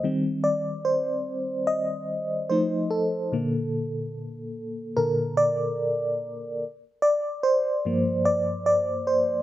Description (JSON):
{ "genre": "R&B", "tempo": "73 BPM", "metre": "4/4", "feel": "swing 58% on 16ths", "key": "unclear", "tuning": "A4 = 441 Hz", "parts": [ { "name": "FM electric piano with tremolo", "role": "solo", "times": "0.0-9.4 s", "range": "G2 to Eb5", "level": "-23 LUFS", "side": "equal", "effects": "slapback echo" } ], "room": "little or no reverb", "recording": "recorded outdoors, with no room sound", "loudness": "-23 LUFS", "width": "side -14 dB against mid", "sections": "0.0-3.3 A section; 3.3-9.4 A section", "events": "FM electric piano solo 0.0-3.3, 3.3-9.4", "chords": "0.0 Eb6; 2.5 F7; 3.3 Bbmaj7; 6.6 Gm7" }